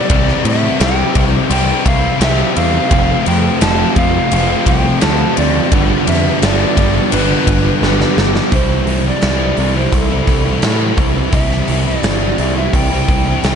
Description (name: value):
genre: rock, shoegaze and dream pop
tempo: 86 BPM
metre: 4/4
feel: straight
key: C major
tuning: A4 = 439 Hz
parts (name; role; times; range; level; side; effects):
- polished pan flute; melody; 0.0-13.6 s; A4 to A5; -21 LUFS; right 1 dB; tape echo
- crunchy overdriven guitar; riff; 0.0-13.6 s; F2 to G4; -20 LUFS; left 12 dB; analog chorus
- distorted electric guitar; riff; 0.0-8.5 s; F2 to C4; -20 LUFS; equal; overdrive
- growling picked electric bass; bass; 0.1-13.6 s; F1 to A2; -17 LUFS; equal; overdrive
- huge arena drum kit; drums; 0.1-13.6 s; hi-hat, kick drum, ride cymbal, snare drum; -16 LUFS; equal; none
- raw garage guitar; riff; 2.9-13.6 s; F2 to E4; -21 LUFS; right 13 dB; overdrive, reverse reverb
room: small room ambience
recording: dark, warm production, nothing above 10.8 kHz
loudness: -11 LUFS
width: side -7 dB against mid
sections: 0.0-8.5 A section; 8.5-13.6 B section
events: drum fill 7.8-8.5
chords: 0.0 C; 2.9 F; 5.7 G7; 8.5 C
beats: | 0.11 0.81 1.51 2.21 | 2.91 3.61 4.31 5.01 | 5.72 6.42 7.12 7.82 | 8.52 9.22 9.93 10.63 | 11.33 12.03 12.73 13.44